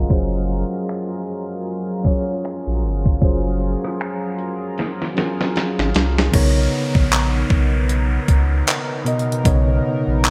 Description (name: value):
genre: contemporary R&B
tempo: 77 BPM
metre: 4/4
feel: swing 58% on 16ths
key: B lydian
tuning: A4 = 440 Hz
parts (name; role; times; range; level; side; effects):
- mellow tine electric piano; accompaniment; 0.0-10.3 s; B2 to G#5; -26 LUFS; equal; none
- chorused pulse-width pad; sustained chords; 0.0-10.3 s; F#3 to A#4; -30 LUFS; equal; none
- warm sub bass; bass; 0.0-10.3 s; F#1 to C#2; -22 LUFS; equal; none
- detuned 8-bit digital drum machine; drums; 0.1-10.3 s; crash cymbal, finger snaps, handclaps, hi-hat, kick drum, rim click, snare drum; -21 LUFS; equal; overdrive, gated reverb
- downlifter; sound effects; 6.3-10.3 s; none; -33 LUFS; equal; none
room: light reverb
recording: bright 1980s-style digital production, low-pass filter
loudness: -20 LUFS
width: mono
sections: 0.0-6.3 A section; 6.3-10.3 B section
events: filter sweep 0.0-6.3; drum fill 4.8-6.3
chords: 0.0 F#maj9; 6.3 Bmaj9